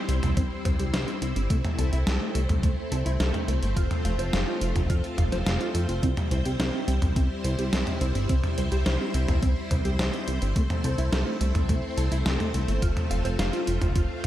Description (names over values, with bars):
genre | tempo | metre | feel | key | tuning
synthwave | 106 BPM | 4/4 | straight | C major | A4 = 440 Hz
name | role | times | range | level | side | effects
string machine, full ensemble | sustained chords | 0.0-14.3 s | G3 to C5 | -32 LUFS | equal | ensemble chorus, sidechain pumping
mellow electric guitar | riff | 0.1-14.3 s | A3 to F5 | -34 LUFS | right 2 dB | analog chorus, digital delay
chorused synth bass | bass | 0.1-14.3 s | F1 to F2 | -26 LUFS | equal | none
clean 12-bit digital drum machine | drums | 0.1-14.3 s | hi-hat, snare drum, toms | -29 LUFS | equal | overdrive, gated reverb
electronic kick drum | drums | 0.4-14.3 s | none | -27 LUFS | equal | none
room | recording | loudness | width
light reverb | bright 1980s-style digital production | -23 LUFS | side -13 dB against mid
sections
0.0-14.3 A section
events
none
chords
0.0 C; 1.5 Am/C; 3.8 F; 6.0 C; 10.6 Am/C; 12.8 F